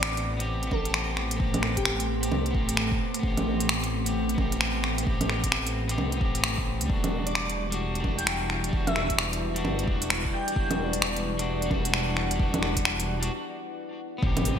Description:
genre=future garage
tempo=131 BPM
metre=4/4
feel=swing 62% on 16ths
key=E minor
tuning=A4 = 444 Hz
part: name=airy dreamy lead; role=melody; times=0.0-2.1, 7.3-10.8 s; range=G4 to G5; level=-34 LUFS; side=equal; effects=chorus, ping-pong delay
part: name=electric guitar at the edge of break-up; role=accompaniment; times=0.0-14.6 s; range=G3 to G4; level=-33 LUFS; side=left 1 dB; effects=sidechain pumping, digital delay
part: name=deep dark ambient pad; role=sustained chords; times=0.9-14.6 s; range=A3 to C6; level=-34 LUFS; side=equal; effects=chorus, built-in reverb, sidechain pumping
part: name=dark detuned saw bass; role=bass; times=0.0-14.6 s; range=E1 to D2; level=-31 LUFS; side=equal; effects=tube saturation, sidechain pumping
part: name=organic electronic drum kit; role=drums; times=0.0-14.6 s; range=bongos, finger snaps, hi-hat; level=-28 LUFS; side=right 1 dB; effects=gated reverb
part: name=electronic kick drum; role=drums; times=0.7-14.3 s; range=none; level=-29 LUFS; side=equal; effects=none
part: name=impact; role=sound effects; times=14.2-14.6 s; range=none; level=-31 LUFS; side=equal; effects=none
room=moderate lush hall reverb, RT60 1.9 s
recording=bright 1980s-style digital production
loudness=-24 LUFS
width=side -8 dB against mid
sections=0.0-14.2 A section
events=break 13.3-14.2; impact 14.2-14.6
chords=0.0 Am7; 6.9 Em7

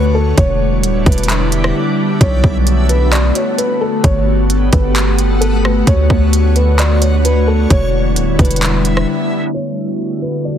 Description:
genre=hip hop, atmospheric cloud-rap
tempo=131 BPM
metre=4/4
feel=half-time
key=unclear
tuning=A4 = 440 Hz
part: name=felt-muted upright piano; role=melody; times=0.0-10.6 s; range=A4 to D5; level=-21 LUFS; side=equal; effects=low-pass filter, ping-pong delay
part: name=glassy FM pad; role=sustained chords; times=0.0-10.6 s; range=D3 to C#5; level=-17 LUFS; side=left 1 dB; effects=ensemble chorus, built-in reverb, sidechain pumping
part: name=warm 808-style bass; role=bass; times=0.0-9.1 s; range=D1 to D2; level=-14 LUFS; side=equal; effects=none
part: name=backwards swelling texture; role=texture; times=0.0-10.6 s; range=B3 to F#5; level=-26 LUFS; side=left 1 dB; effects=built-in reverb
part: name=trap drum kit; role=drums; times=0.4-9.1 s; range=handclaps, hi-hat, kick drum, rim click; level=-16 LUFS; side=equal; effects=none
room=digital ambience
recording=heavily compressed radio sound, multiband compression, low-pass filter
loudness=-11 LUFS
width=side -9 dB against mid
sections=0.0-9.5 A section; 9.5-10.6 B section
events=drums muted 1.8-2.2; break 9.1-9.5; filter sweep 9.5-10.6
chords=0.4 Em7; 2.2 Bm7; 4.0 Gmaj9; 5.9 Dmaj7; 7.7 Em7; 9.5 Bm7

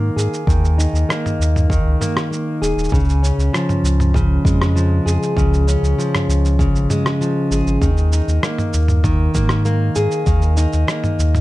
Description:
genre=folktronica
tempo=98 BPM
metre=4/4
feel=straight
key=unclear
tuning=A4 = 440 Hz
part: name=fingerpicked plugged-in steel-string acoustic guitar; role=arpeggios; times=0.0-11.4 s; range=Db3 to Ab4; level=-19 LUFS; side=equal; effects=low-pass filter, ping-pong delay, plate reverb
part: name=warm sub bass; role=bass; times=0.0-11.4 s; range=Eb1 to Ab2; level=-16 LUFS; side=equal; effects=none
part: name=lo-fi sampler-style drum kit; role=drums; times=0.2-11.4 s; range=rim click, shaker, toms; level=-23 LUFS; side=right 1 dB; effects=none
part: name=electronic kick drum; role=drums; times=0.5-10.4 s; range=none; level=-19 LUFS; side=equal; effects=none
room=light reverb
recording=dark, warm production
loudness=-14 LUFS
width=side -18 dB against mid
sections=0.0-11.4 A section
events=none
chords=0.0 Ebsus4; 2.9 Db; 7.8 Ebsus4

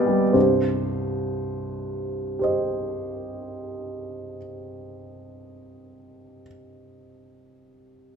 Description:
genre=classical, romantic character piece for solo piano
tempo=free time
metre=none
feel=none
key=C minor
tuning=A4 = 439 Hz
part: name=clear upright piano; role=solo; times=0.0-8.2 s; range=C2 to Eb5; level=-23 LUFS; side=equal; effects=none
room=moderate recital hall reverb, RT60 1.8 s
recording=minimal, uncompressed stereo recording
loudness=-23 LUFS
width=side -6 dB against mid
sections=0.3-6.5 A section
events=none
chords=0.3 Cm

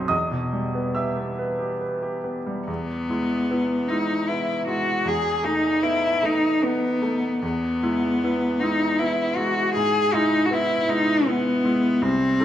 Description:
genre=classical, romantic duo for cello and grand piano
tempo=68-80 BPM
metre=3/4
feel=rubato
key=E major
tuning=A4 = 442 Hz
part: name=bright baby grand piano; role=accompaniment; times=0.0-12.4 s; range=B1 to E6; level=-25 LUFS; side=right 1 dB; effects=none
part: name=rich cello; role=melody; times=2.7-12.4 s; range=B3 to G#4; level=-21 LUFS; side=left 1 dB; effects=none
room=wet recital hall reverb, RT60 1.7 s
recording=minimal, uncompressed stereo recording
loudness=-20 LUFS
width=side -11 dB against mid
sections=0.0-2.7 A section; 2.7-12.4 B section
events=none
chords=0.1 Em; 2.7 E; 5.0 B7/E; 7.4 E; 9.7 E/G#

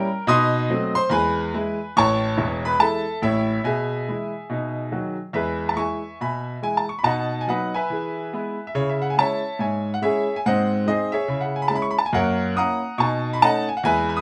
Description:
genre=jazz, stride piano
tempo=142 BPM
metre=4/4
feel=swing 61% on 8ths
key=E major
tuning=A4 = 440 Hz
part: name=bright grand piano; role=solo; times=0.0-14.2 s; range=E1 to D#6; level=-23 LUFS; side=equal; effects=none
room=moderate club reverb, RT60 0.5 s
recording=none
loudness=-23 LUFS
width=mono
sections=0.0-5.3 A section; 5.3-14.2 B section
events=none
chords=0.3 B7b9; 1.1 E; 2.0 Amaj7; 3.7 E/B; 4.5 B; 5.3 E; 7.0 B; 7.9 E; 8.7 C#m; 10.4 G#7; 11.3 C#m; 12.1 F#7; 13.0 B13

